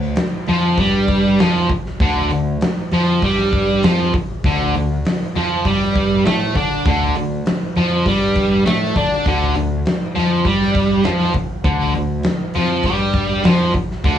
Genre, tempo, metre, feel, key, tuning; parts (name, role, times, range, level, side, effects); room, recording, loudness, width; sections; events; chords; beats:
blues rock power trio and southern rock; 100 BPM; 4/4; straight; D minor; A4 = 439 Hz
distorted electric guitar; riff; 0.0-14.2 s; D3 to D4; -18 LUFS; equal; overdrive
fuzz picked electric bass; bass; 0.0-14.2 s; D2 to D3; -20 LUFS; equal; overdrive
big rock drum kit; drums; 0.2-14.2 s; hi-hat, kick drum, snare drum; -20 LUFS; equal
moderate studio ambience, RT60 0.5 s; cassette tape, small room ambience; -15 LUFS; side -10 dB against mid
0.0-14.2 A section
0.0 Dm
0.18 0.79 1.40 | 2.01 2.62 3.23 3.84 | 4.44 5.05 5.65 6.26 | 6.86 7.46 8.06 8.66 | 9.27 9.86 10.46 11.06 | 11.66 12.26 12.86 13.46 | 14.05